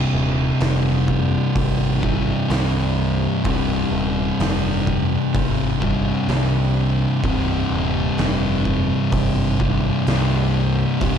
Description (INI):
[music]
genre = stoner and doom metal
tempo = 63 BPM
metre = 4/4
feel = straight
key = unclear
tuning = A4 = 440 Hz
[part]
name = string machine, full ensemble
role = sustained chords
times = 0.0-11.2 s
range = C3 to D4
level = -32 LUFS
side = right 2 dB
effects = none
[part]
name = thick fuzz guitar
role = riff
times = 0.0-11.2 s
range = C2 to C3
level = -21 LUFS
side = left 5 dB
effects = distortion
[part]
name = thick fuzz guitar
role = riff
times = 0.0-11.2 s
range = C2 to C3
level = -24 LUFS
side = right 10 dB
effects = distortion
[part]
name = growling picked electric bass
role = bass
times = 0.0-11.2 s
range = C1 to C2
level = -25 LUFS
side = right 1 dB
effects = overdrive, tube saturation
[part]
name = oversized low-tuned drum kit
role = drums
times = 0.6-11.2 s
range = hi-hat, kick drum, snare drum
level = -26 LUFS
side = right 1 dB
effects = none
[sound]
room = little or no reverb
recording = dark, warm production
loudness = -17 LUFS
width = side -8 dB against mid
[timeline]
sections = 0.0-11.2 A section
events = none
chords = 0.0 C5